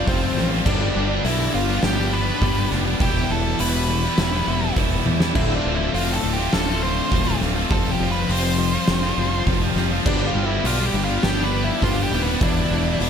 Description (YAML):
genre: post-rock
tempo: 102 BPM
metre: 4/4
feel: straight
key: unclear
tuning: A4 = 440 Hz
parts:
  - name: octave-fuzz lead guitar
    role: melody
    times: 0.0-13.1 s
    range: B3 to C5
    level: -27 LUFS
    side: equal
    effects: distortion, slapback echo
  - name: pedal harmonium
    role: sustained chords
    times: 0.0-13.1 s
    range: G4 to C6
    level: -36 LUFS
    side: right 4 dB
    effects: none
  - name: twelve-string electric guitar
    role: arpeggios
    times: 0.0-13.1 s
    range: D2 to G4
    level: -29 LUFS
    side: left 1 dB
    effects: slapback echo
  - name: crunchy overdriven guitar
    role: riff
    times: 0.0-13.1 s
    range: D2 to G4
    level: -26 LUFS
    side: left 11 dB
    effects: none
  - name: tight distorted guitar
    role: riff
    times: 0.0-13.1 s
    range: D2 to G4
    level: -28 LUFS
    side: right 16 dB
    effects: distortion
  - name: growling fingered electric bass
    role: bass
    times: 0.1-13.1 s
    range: D1 to E2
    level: -24 LUFS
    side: right 1 dB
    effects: overdrive
  - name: oversized low-tuned drum kit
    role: drums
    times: 0.1-13.1 s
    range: crash cymbal, hi-hat, kick drum, snare drum, toms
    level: -24 LUFS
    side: equal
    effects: none
room: studio ambience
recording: none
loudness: -18 LUFS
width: side -7 dB against mid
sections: 0.0-13.1 A section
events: drum fill 5.1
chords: 0.0 Fsus2; 0.7 G7; 3.0 Em7; 5.4 Dm7; 7.7 Fsus2; 10.1 G7; 12.4 Em7